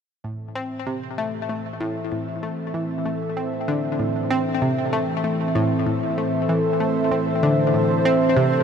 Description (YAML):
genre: ambient, sequencer-driven space music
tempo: 96 BPM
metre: 4/4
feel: straight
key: A minor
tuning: A4 = 440 Hz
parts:
  - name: sweeping resonant pad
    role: sustained chords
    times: 0.2-8.6 s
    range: A2 to E5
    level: -23 LUFS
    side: equal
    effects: chorus, shimmer reverb
  - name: analog pluck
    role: riff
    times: 0.2-8.5 s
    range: A2 to C4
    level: -24 LUFS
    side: left 1 dB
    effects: chorus, ping-pong delay, shimmer reverb
  - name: bubbling stepped-filter texture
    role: texture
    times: 1.1-8.6 s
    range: C5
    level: -29 LUFS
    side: right 2 dB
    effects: chorus, built-in reverb, shimmer reverb
room: wet huge ambient reverb, RT60 7.5 s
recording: none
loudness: -20 LUFS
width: side -7 dB against mid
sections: 0.2-8.6 A section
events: fade-in on synth arpeggio sound 0.2-8.6; fade-in on analog synth pad 0.2-8.6; fade-in on synth texture 0.2-8.6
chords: 0.2 Am